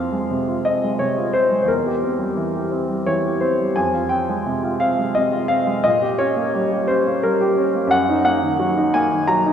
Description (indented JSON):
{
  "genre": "classical, romantic character piece for solo piano",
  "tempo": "87 BPM",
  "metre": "3/4",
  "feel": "rubato",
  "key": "F minor",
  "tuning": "A4 = 437 Hz",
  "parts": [
    { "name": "clear grand piano", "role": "solo", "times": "0.0-9.5 s", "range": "E2 to Bb5", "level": "-17 LUFS", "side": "equal", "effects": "none" }
  ],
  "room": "wet cathedral reverb, RT60 4.3 s",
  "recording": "recorded in a church or concert hall",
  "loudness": "-17 LUFS",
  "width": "side -8 dB against mid",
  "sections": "0.0-9.5 A section",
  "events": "none",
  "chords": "0.0 Fm; 1.7 C7/E; 3.8 Fm; 5.8 Gdim/Bb; 7.9 Ebm/Gb",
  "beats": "0.29 0.99 | 1.68 2.36 3.06 | 3.75 4.46 5.15 | 5.85 6.54 7.22 | 7.91 8.59 9.29"
}